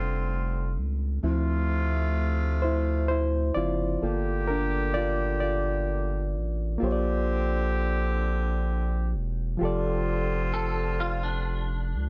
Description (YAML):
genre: slow six-eight R&B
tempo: 43 BPM (dotted quarters)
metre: 6/8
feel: straight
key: unclear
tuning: A4 = 439 Hz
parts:
  - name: reed electric piano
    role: accompaniment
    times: 0.0-12.1 s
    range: F3 to D5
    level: -32 LUFS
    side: equal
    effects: none
  - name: warm horn section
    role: stabs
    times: 0.0-11.9 s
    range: C3 to G4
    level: -35 LUFS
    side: equal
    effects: none
  - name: round analog bass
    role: bass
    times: 0.0-12.1 s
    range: E1 to D2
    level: -30 LUFS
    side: equal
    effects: none
  - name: clean electric guitar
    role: second line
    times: 10.5-12.1 s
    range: D4 to A4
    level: -36 LUFS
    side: equal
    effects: ensemble chorus
room: little or no reverb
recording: nothing above 8.0 kHz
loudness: -27 LUFS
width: mono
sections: 0.0-6.8 A section; 6.8-12.1 A section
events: reed electric piano solo 0.0-6.8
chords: 0.0 F6; 1.2 Dm9; 4.0 Gm7; 6.8 Bb69; 9.6 F6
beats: | 1.23 2.62 | 4.02 5.41 | 6.81 8.20 | 9.60 10.99